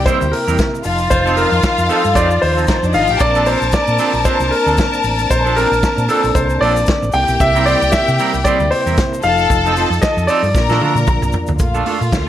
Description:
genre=disco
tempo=114 BPM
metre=4/4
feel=swing 56% on 16ths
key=Bb major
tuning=A4 = 440 Hz
part: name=warm grand piano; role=melody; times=0.0-11.0 s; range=A4 to G5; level=-17 LUFS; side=left 1 dB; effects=slapback echo
part: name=clear studio string section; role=second line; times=0.0-12.3 s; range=Bb3 to Bb5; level=-20 LUFS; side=left 3 dB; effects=none
part: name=tonewheel organ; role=sustained chords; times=0.0-12.3 s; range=C3 to A5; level=-24 LUFS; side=equal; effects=overdrive, chorus vibrato, slow rotary speaker
part: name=hollow-body short-scale fingered electric bass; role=bass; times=0.0-12.3 s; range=F1 to C3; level=-19 LUFS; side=equal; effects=none
part: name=clean electric guitar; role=accompaniment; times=0.1-12.3 s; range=F3 to C5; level=-22 LUFS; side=right 7 dB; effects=none
part: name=warm soul drum kit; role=drums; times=0.1-12.3 s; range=hi-hat, kick drum, snare drum, toms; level=-20 LUFS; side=equal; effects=none
part: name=tube shaker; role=percussion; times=0.1-12.3 s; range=none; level=-36 LUFS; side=left 7 dB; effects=none
room=light reverb, studio ambience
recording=none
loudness=-12 LUFS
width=side -11 dB against mid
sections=0.0-11.6 A section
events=drum fill 10.5-11.6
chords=0.0 C7; 0.8 F7; 3.2 Bbmaj9; 7.1 C7; 9.2 F7; 10.5 Bbmaj7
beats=0.06 0.58 | 1.11 1.63 2.16 2.68 | 3.21 3.73 4.26 4.78 | 5.30 5.83 6.35 6.88 | 7.40 7.93 8.45 8.97 | 9.50 10.02 10.55 11.07 | 11.60 12.12

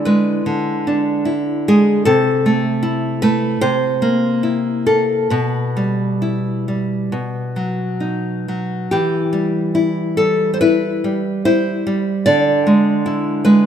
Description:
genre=romantic piece for solo classical guitar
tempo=65-80 BPM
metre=4/4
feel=rubato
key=E minor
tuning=A4 = 439 Hz
part: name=nylon-string guitar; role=solo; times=0.0-13.7 s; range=B2 to D5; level=-15 LUFS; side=equal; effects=none
room=moderate concert hall reverb, RT60 2.1 s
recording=minimal, uncompressed stereo recording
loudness=-15 LUFS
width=side -8 dB against mid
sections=0.0-13.7 A section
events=none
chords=0.0 E7/D; 2.1 Am/C; 3.6 C7; 5.3 Em/B; 7.1 B; 8.9 Em; 12.3 E7/D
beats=0.45 1.26 | 2.06 2.81 3.60 4.43 | 5.30 6.21 7.12 8.02 | 8.91 9.75 10.60 11.45 | 12.26 13.06

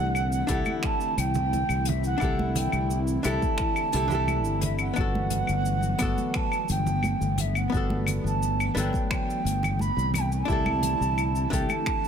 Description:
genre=sunset chillout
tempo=87 BPM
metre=4/4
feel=straight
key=unclear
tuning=A4 = 440 Hz
part: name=baroque flute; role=melody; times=0.0-12.1 s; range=E5 to B5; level=-30 LUFS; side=right 4 dB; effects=digital delay
part: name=archtop guitar, miked and amplified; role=accompaniment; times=0.0-12.1 s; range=F#3 to A4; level=-32 LUFS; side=moving between left 5 dB and right 4 dB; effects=auto-pan, digital delay
part: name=airy breathy pad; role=sustained chords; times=0.0-12.1 s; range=D3 to E4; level=-32 LUFS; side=left 2 dB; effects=chorus
part: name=sustaining fretless electric bass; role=bass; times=0.0-11.7 s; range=G1 to C2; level=-28 LUFS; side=equal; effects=none
part: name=soft brush drum kit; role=drums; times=0.1-12.1 s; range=cabasa, claves, finger snaps, hi-hat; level=-33 LUFS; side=left 4 dB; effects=none
part: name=electronic kick drum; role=drums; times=0.5-12.0 s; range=none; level=-30 LUFS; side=left 1 dB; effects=none
part: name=congas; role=percussion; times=0.7-11.8 s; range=none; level=-34 LUFS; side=right 3 dB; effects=none
room=light reverb, studio reverb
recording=none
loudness=-23 LUFS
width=side -7 dB against mid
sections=0.0-12.1 A section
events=none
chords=0.0 C69; 5.0 Gmaj9; 10.1 C69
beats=0.15 0.84 1.53 | 2.22 2.91 3.60 4.29 | 4.97 5.67 6.36 7.04 | 7.73 8.42 9.11 9.80 | 10.49 11.18 11.87

